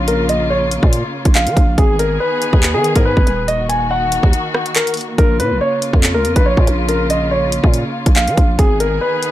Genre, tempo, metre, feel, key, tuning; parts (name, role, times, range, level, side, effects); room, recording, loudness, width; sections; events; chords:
hip hop, drill; 141 BPM; 4/4; half-time; Bb phrygian; A4 = 439 Hz
dark concert grand piano; melody; 0.0-9.3 s; Ab4 to Ab5; -18 LUFS; equal; analog delay
muted studio string section; sustained chords; 0.0-9.3 s; Db3 to Ab4; -22 LUFS; left 1 dB
growling 808-style bass; bass; 0.0-9.0 s; Eb1 to F3; -19 LUFS; equal
drill drum kit; drums; 0.1-9.3 s; handclaps, hi-hat, kick drum, rim click; -14 LUFS; equal
little or no reverb; dry, gritty hardware recording, transformer saturation; -12 LUFS; side -14 dB against mid
0.0-9.3 A section
kick muted 4.3-5.2
0.0 Bbm; 1.8 Abm; 3.5 Ebm; 5.2 Bbm; 8.6 Abm